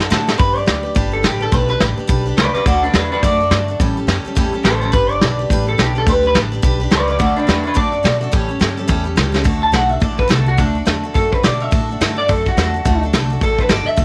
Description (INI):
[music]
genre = rockabilly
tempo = 212 BPM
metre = 4/4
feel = swing 61% on 8ths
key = D mixolydian from 9.5 s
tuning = A4 = 440 Hz
[part]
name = picked steel-string acoustic guitar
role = accompaniment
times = 0.0-14.0 s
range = A2 to B4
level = -25 LUFS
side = equal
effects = none
[part]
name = upright bass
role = bass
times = 0.0-14.0 s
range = F#1 to B2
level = -23 LUFS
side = equal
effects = none
[part]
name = vintage brush drum kit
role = drums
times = 0.0-14.0 s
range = hi-hat, kick drum, snare drum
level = -20 LUFS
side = equal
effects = none
[part]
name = electric guitar through a small old amp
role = melody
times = 0.4-14.0 s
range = D4 to A5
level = -20 LUFS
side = equal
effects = lush chorus, tape echo
[sound]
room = little or no reverb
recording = none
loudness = -16 LUFS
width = mono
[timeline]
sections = 0.4-9.5 A section; 9.5-14.0 B section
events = drum fill 0.0-0.4, 9.3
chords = 0.4 G; 2.7 D; 3.8 A7; 4.9 G; 7.2 D; 8.3 A7; 9.5 D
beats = 0.11 | 0.40 0.68 0.96 1.24 | 1.53 1.81 2.09 2.38 | 2.66 2.94 3.23 3.51 | 3.79 4.08 4.36 4.64 | 4.93 5.21 5.50 5.78 | 6.06 6.34 6.63 6.91 | 7.19 7.48 7.76 8.04 | 8.32 8.61 8.89 9.17 | 9.46 9.74 10.02 10.30 | 10.59 10.87 11.15 11.43 | 11.72 12.00 12.28 12.56 | 12.85 13.13 13.41 13.70 | 13.98